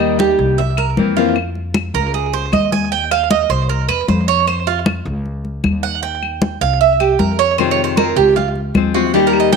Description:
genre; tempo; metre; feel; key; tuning
latin, Cuban son and guajira; 154 BPM; 4/4; straight; unclear; A4 = 440 Hz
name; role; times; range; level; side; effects
nylon-string guitar; accompaniment; 0.0-1.4, 7.6-9.6 s; C3 to G4; -16 LUFS; left 15 dB; none
Cuban tres; arpeggios; 0.0-9.6 s; Eb4 to Ab5; -16 LUFS; right 10 dB; slapback echo
upright bass; bass; 0.0-9.6 s; C2 to F2; -21 LUFS; left 1 dB; none
congas; percussion; 0.0-9.6 s; none; -19 LUFS; left 2 dB; none
claves; percussion; 0.8-9.5 s; none; -26 LUFS; left 15 dB; none
room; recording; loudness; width
moderate echo chamber reverb, RT60 1.4 s, studio ambience; 1960s-style stereo with parts hard left and right; -14 LUFS; side -5 dB against mid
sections
0.0-1.4 A section; 1.4-9.6 B section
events
Cuban tres solo 1.4-9.6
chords
0.0 Eb; 0.6 C7; 1.4 Db6; 2.1 Abadd11/Db; 2.9 Cmadd11; 3.7 C; 4.5 Dbmaj7; 5.3 Dbsus24; 6.0 Eb; 6.8 Cadd11; 7.6 Dbmaj7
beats
0.19 0.58 0.97 | 1.36 1.75 2.14 2.53 | 2.92 3.31 3.70 4.09 | 4.47 4.86 5.25 5.64 | 6.03 6.42 6.81 7.20 | 7.58 7.97 8.36 8.75 | 9.14 9.53

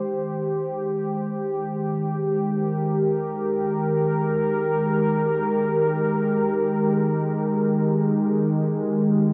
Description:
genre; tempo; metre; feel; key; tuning
ambient; free time; none; none; Ab major; A4 = 440 Hz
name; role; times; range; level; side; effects
warm analog pad; solo; 0.0-9.3 s; Eb3 to C5; -23 LUFS; equal; chorus, diffuse ambient delay
room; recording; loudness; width
wet huge ambient reverb, RT60 8.7 s; dark, warm production; -23 LUFS; mono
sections
0.0-9.3 A section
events
none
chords
0.0 Abmaj7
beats
free time

